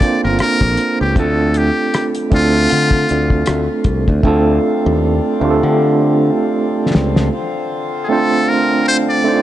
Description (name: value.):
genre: R&B, neo-soul.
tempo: 78 BPM.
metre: 4/4.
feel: swing 56% on 16ths.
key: unclear.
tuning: A4 = 440 Hz.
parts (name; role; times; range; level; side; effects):
trumpet with metal mute; melody; 0.0-9.4 s; F4 to D5; -18 LUFS; left 2 dB; none.
overdriven tine electric piano; accompaniment; 0.0-9.4 s; A3 to C5; -16 LUFS; right 3 dB; medium tremolo.
modern bright fingered electric bass; bass; 0.0-7.3 s; G1 to D3; -16 LUFS; left 1 dB; none.
cloth-damped thuddy drum kit; drums; 0.0-7.3 s; hi-hat, kick drum, rim click, snare drum; -17 LUFS; left 1 dB; none.
pedal harmonium; sustained chords; 4.2-9.4 s; D3 to F4; -23 LUFS; left 4 dB; stereo widening.
room: light reverb, studio reverb.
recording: nothing above 10.6 kHz.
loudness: -12 LUFS.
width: side -12 dB against mid.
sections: 0.0-4.2 A section; 4.2-7.3 B section; 7.3-9.4 C section.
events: drum fill 4.2-7.3.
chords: 0.0 Bbmaj9; 1.2 Dm7.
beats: 0.40 | 1.17 1.94 2.71 3.48 | 4.24 5.01 5.78 6.55 | 7.32 8.09 8.86.